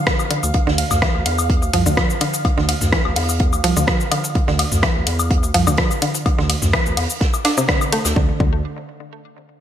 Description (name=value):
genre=minimal techno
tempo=126 BPM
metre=4/4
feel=swing 53% on 16ths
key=D minor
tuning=A4 = 443 Hz
part: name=pulsing gated texture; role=texture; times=0.0-8.2 s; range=F5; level=-30 LUFS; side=right 2 dB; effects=chorus, built-in reverb, sidechain pumping
part: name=electronic kick drum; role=drums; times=0.1-8.5 s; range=none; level=-19 LUFS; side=equal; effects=studio reverb
part: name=house drum kit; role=drums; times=0.1-8.1 s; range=cabasa, hi-hat, ride cymbal, rim click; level=-22 LUFS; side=equal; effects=studio reverb, gated reverb
part: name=open jazz drum kit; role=drums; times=0.1-8.2 s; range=hi-hat, snare drum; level=-29 LUFS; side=right 3 dB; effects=sidechain pumping on hats, high-pass filter on hats, studio reverb, high-pass filter on snare, high-pass filter on room, gated reverb
part: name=electronic woodblock and toms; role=percussion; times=0.1-8.1 s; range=none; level=-25 LUFS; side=left 3 dB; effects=overdrive, studio reverb, gated reverb, ping-pong delay
part: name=mallet-like synth pluck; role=riff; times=0.3-8.6 s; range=C3 to D4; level=-22 LUFS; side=right 1 dB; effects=chorus, cassette tape, sidechain pumping, ping-pong delay
part: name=saturated sub bass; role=bass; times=0.4-8.6 s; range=C2 to E2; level=-22 LUFS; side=equal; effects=sidechain pumping
room=moderate plate reverb, RT60 2.3 s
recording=bright 1980s-style digital production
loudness=-15 LUFS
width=side -10 dB against mid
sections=0.0-8.2 A section; 8.2-9.6 B section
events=drop 0.0-8.2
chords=0.0 Dm; 8.2 N.C.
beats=0.07 | 0.54 1.02 1.50 1.97 | 2.45 2.92 3.40 3.88 | 4.35 4.83 5.31 5.78 | 6.26 6.74 7.21 7.69 | 8.16